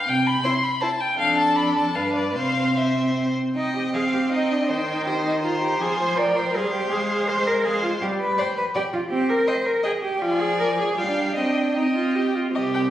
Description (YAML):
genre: quick classical-period movement for string quartet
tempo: 145-167 BPM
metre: 3/4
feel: rubato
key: C major, C minor from 3.6 s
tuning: A4 = 440 Hz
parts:
  - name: warm violin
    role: melody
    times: 0.0-12.8 s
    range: D5 to C6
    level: -26 LUFS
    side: left 3 dB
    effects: none
  - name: warm cello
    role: bass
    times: 0.1-12.9 s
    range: C2 to D5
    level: -24 LUFS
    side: right 1 dB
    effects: none
  - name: rich violin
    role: second line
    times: 0.4-12.9 s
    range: G4 to F5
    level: -28 LUFS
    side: left 1 dB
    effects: none
  - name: rich viola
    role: accompaniment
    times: 0.4-12.9 s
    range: Eb3 to G4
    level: -26 LUFS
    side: right 1 dB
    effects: none
room: wet recital hall reverb, RT60 1.4 s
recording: recorded on a phone in the room, studio reverb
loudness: -20 LUFS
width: side -12 dB against mid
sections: 0.0-3.6 A section; 3.6-12.5 B section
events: none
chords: 0.1 C; 1.2 Dm/F; 1.9 G7; 2.4 C; 3.6 Cm; 4.7 Cm/Eb; 5.8 Fm; 6.9 Fm/Ab; 8.0 G; 9.1 C5; 10.2 Ddim/F; 11.0 G5; 11.4 Cm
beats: | 0.07 0.44 0.81 | 1.18 1.56 1.95 | 2.35 2.76 3.16 | 3.56 3.94 4.32 | 4.70 5.06 5.44 | 5.81 6.18 6.55 | 6.92 7.28 7.65 | 8.02 8.39 8.75 | 9.11 9.47 9.84 | 10.21 10.59 10.97 | 11.36 11.76 12.15 | 12.55